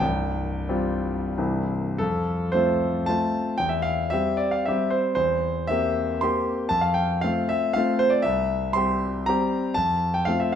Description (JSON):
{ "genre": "classical, romantic triple-time dance for piano with dotted rhythms", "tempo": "84-126 BPM", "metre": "3/4", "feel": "rubato", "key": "F major", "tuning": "A4 = 440 Hz", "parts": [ { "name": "clear concert grand piano", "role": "solo", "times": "0.0-10.6 s", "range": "C1 to C6", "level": "-22 LUFS", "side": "equal", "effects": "none" } ], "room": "wet recital hall reverb, RT60 1.5 s", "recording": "recorded in a church or concert hall", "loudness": "-22 LUFS", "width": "side -8 dB against mid", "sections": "0.0-2.0 A section; 2.0-10.6 B section", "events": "none", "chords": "0.0 Csus4; 1.4 C; 2.0 F; 3.6 C/E; 5.2 C7/E; 6.7 F; 8.2 C; 9.8 F", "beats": "| 0.01 0.70 1.38 | 2.00 2.54 3.08 | 3.59 4.12 4.66 | 5.17 5.70 6.22 | 6.71 7.23 7.75 | 8.23 8.74 9.26 | 9.76 10.27" }